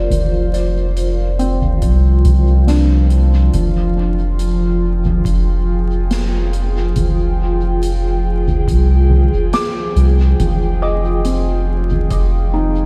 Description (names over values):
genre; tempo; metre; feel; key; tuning
ambient dub; 70 BPM; 4/4; swing 54% on 16ths; F dorian; A4 = 440 Hz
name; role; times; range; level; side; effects
warbly tape-like pad; sustained chords; 0.0-12.9 s; F3 to G5; -24 LUFS; equal; chorus, built-in reverb, phaser
felt-muted upright piano; arpeggios; 0.0-12.9 s; C4 to D6; -26 LUFS; equal; analog delay
soft dub sub bass; bass; 0.0-12.9 s; F1 to C2; -17 LUFS; equal; none
soft-mallet drum kit; drums; 0.1-12.3 s; hi-hat, snare drum, toms; -26 LUFS; equal; small room ambience, dub echo
electronic kick drum; drums; 1.8-12.3 s; none; -24 LUFS; equal; none
room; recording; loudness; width
studio reverb; echo-heavy mix, vinyl crackle, faint mains hum; -15 LUFS; mono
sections
0.0-3.5 A section; 3.5-12.9 B section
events
none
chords
0.0 Bb/F; 3.5 Fm7